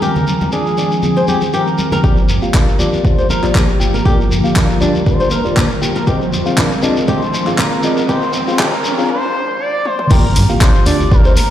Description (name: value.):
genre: afro house.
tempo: 119 BPM.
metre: 4/4.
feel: swing 54% on 16ths.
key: G phrygian.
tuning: A4 = 440 Hz.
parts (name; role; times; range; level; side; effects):
expressive synth lead; melody; 0.0-11.5 s; G4 to D5; -21 LUFS; equal; chorus, digital delay.
ethereal airy pad; sustained chords; 0.0-9.1 s; D3 to F4; -21 LUFS; right 1 dB; ensemble chorus, built-in reverb, sidechain pumping.
flamenco guitar; arpeggios; 0.0-11.5 s; D4 to C5; -21 LUFS; left 1 dB; sidechain pumping, low-pass filter, digital delay.
congas; percussion; 0.0-2.0 s; none; -20 LUFS; left 1 dB; none.
shekere; percussion; 0.0-11.5 s; none; -26 LUFS; left 2 dB; none.
mellow tine electric piano; stabs; 2.0-11.3 s; Bb3 to G5; -20 LUFS; left 2 dB; slow stereo tremolo, sidechain pumping, low-pass filter, digital delay.
round analog bass; bass; 2.0-11.3 s; F1 to G2; -19 LUFS; equal; sidechain pumping.
electronic kick drum; drums; 2.0-11.2 s; none; -14 LUFS; equal; studio reverb.
riser and impact; sound effects; 4.7-11.5 s; none; -23 LUFS; right 1 dB; none.
deep house drum kit; drums; 2.5-11.5 s; crash cymbal, handclaps, hi-hat, toms; -22 LUFS; equal; studio reverb.
room: moderate lush hall reverb, RT60 2.2 s.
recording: played on a big sound system in a bare room, large studio reverb, high-pass filter.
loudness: -12 LUFS.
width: side -11 dB against mid.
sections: 0.0-2.0 A section; 2.0-10.1 B section; 10.1-11.5 C section.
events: build-up 2.0-10.1; filter sweep on tine electric piano 2.0-10.1; filter sweep on analog synth lead 2.0-10.1; filter sweep 2.0-10.1; riser 4.7-9.1; drum fill 9.9; drop 10.1-11.5; impact 10.1-11.5.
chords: 0.0 Fm7; 2.0 Gm7; 6.1 Fm7; 10.1 Gm7.